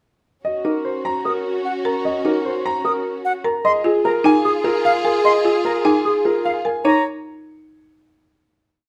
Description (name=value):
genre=classical, minimalist pattern music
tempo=150 BPM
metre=4/4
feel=straight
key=Eb dorian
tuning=A4 = 440 Hz
part: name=warm grand piano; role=melody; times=0.4-7.0 s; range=Ab4 to Bb5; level=-23 LUFS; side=equal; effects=none
part: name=warm clarinet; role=second line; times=0.4-6.6 s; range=Gb4 to Ab4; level=-27 LUFS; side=equal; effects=none
part: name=rich symphonic string section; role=sustained chords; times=0.4-6.6 s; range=Db4 to Ab4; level=-29 LUFS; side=equal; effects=none
part: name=folk marimba with hard mallets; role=arpeggios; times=0.6-7.0 s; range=Eb4 to Bb4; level=-24 LUFS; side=equal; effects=none
part: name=concert flute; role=arpeggios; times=1.3-7.0 s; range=F5 to Eb6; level=-23 LUFS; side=equal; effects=none
room=moderate large studio reverb, RT60 0.8 s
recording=close, detailed microphones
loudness=-19 LUFS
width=mono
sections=0.5-6.9 A section; 6.9-8.5 final chord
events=none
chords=0.5 Ebm7; 3.7 Fm7/Eb; 6.9 Eb5